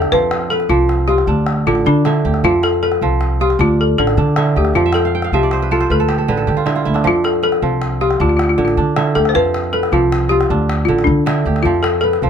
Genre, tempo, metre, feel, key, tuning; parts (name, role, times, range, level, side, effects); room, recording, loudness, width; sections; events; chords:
west african traditional, West African string and xylophone music; 104 BPM (dotted quarters); 12/8; straight; F lydian; A4 = 440 Hz
balafon; melody; 0.0-12.3 s; D4 to C5; -16 LUFS; left 3 dB
kora; arpeggios; 0.0-12.3 s; D3 to G5; -20 LUFS; right 7 dB
upright bass; bass; 0.0-12.3 s; A1 to D3; -18 LUFS; equal
calabash; percussion; 0.0-12.3 s; -25 LUFS; left 2 dB
light reverb; -13 LUFS; side -8 dB against mid
0.0-12.3 A section
kora fill 4.8-7.0
0.1 F5; 1.3 D5; 2.4 F; 3.6 D5; 4.7 F; 5.9 D5; 7.0 F; 8.2 D5; 9.3 F5; 10.5 D5; 11.6 F